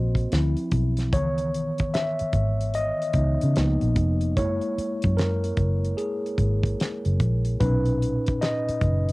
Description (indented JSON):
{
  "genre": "R&B, neo-soul",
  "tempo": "74 BPM",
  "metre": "4/4",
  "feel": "swing 63% on 16ths",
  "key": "C# dorian",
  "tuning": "A4 = 439 Hz",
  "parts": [
    { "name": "mellow tine electric piano", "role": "accompaniment", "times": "0.0-9.1 s", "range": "A#2 to E5", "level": "-26 LUFS", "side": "equal", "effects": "medium stereo tremolo, cassette tape" },
    { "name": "vintage muted fingered electric bass", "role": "bass", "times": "0.0-9.1 s", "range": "E#1 to C#3", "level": "-23 LUFS", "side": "equal", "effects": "transformer saturation" },
    { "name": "damped 70s drum kit", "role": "drums", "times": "0.1-9.1 s", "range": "hi-hat, kick drum, snare drum", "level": "-27 LUFS", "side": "equal", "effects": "cassette tape" }
  ],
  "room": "little or no reverb",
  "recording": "home recording on cassette",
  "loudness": "-22 LUFS",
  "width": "side -22 dB against mid",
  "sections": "0.0-9.1 A section",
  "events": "tine electric piano solo 0.0-9.1",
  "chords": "0.3 Dm7; 1.1 C#m7; 3.6 C#13; 4.4 F#9; 7.6 Bmaj7",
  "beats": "0.31 | 1.12 1.94 2.75 3.56 | 4.37 5.18 5.99 6.80 | 7.61 8.42"
}